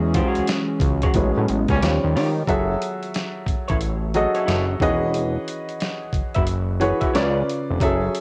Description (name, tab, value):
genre	R&B, neo-soul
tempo	90 BPM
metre	4/4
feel	swing 63% on 16ths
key	unclear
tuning	A4 = 439 Hz
part	clear grand piano	accompaniment	0.0-8.2 s	C#3 to E5	-26 LUFS	equal	cassette tape
part	hollow soft pad	sustained chords	0.0-2.5 s	D#3 to G#4	-32 LUFS	equal	chorus, cassette tape
part	fat analog bass	bass	0.0-8.1 s	E1 to D#3	-25 LUFS	equal	none
part	electric guitar through a small old amp	second line	0.1-7.4 s	E4 to E5	-31 LUFS	equal	cassette tape
part	dusty soul sampler-style drum kit	drums	0.1-8.2 s	hi-hat, kick drum, snare drum	-27 LUFS	equal	none
part	bright trombone section	stabs	1.4-1.9 s	G#2 to C#4	-30 LUFS	equal	cassette tape
room	light reverb, digital ambience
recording	home recording on cassette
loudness	-22 LUFS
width	mono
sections	0.0-2.5 A section; 2.5-8.2 B section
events	band accent 0.0-2.5; grand piano solo 0.0-2.5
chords	0.0 E69; 1.1 Amaj13; 1.8 D#9; 2.5 F#m7; 4.8 C#m11/E; 7.1 C#7b9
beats	0.47 1.14 1.80 | 2.47 3.14 3.81 4.47 | 5.14 5.80 6.47 7.14 | 7.80